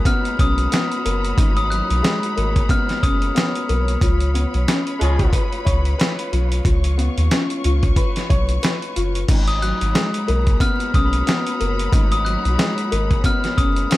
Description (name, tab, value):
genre	hip hop, boom-bap hip-hop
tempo	91 BPM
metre	4/4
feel	swing 57% on 16ths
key	G# dorian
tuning	A4 = 442 Hz
part	glockenspiel with hard plastic mallets	melody	0.0-3.3, 9.5-13.9 s	D#6 to F#6	-25 LUFS	left 2 dB	high-pass filter, low-pass filter, digital delay
part	warm upright piano	accompaniment	0.0-14.0 s	G#2 to C#5	-24 LUFS	left 2 dB	high-pass filter, low-pass filter
part	warm studio string section	sustained chords	0.0-14.0 s	E#4 to C#6	-30 LUFS	left 2 dB	high-pass filter, low-pass filter
part	dusty soul sampler-style drum kit	drums	0.1-14.0 s	crash cymbal, hi-hat, kick drum, snare drum	-19 LUFS	equal	none
part	soft dub sub bass	bass	0.4-13.9 s	F#1 to D#2	-20 LUFS	equal	none
part	warm horn section	stabs	5.0-5.4 s	E#3 to G#4	-30 LUFS	right 2 dB	high-pass filter, low-pass filter, digital delay
room	little or no reverb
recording	vinyl crackle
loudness	-16 LUFS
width	side -17 dB against mid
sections	0.0-9.3 A section; 9.3-14.0 A section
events	none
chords	0.0 G#m11; 4.0 C#7; 9.3 G#m11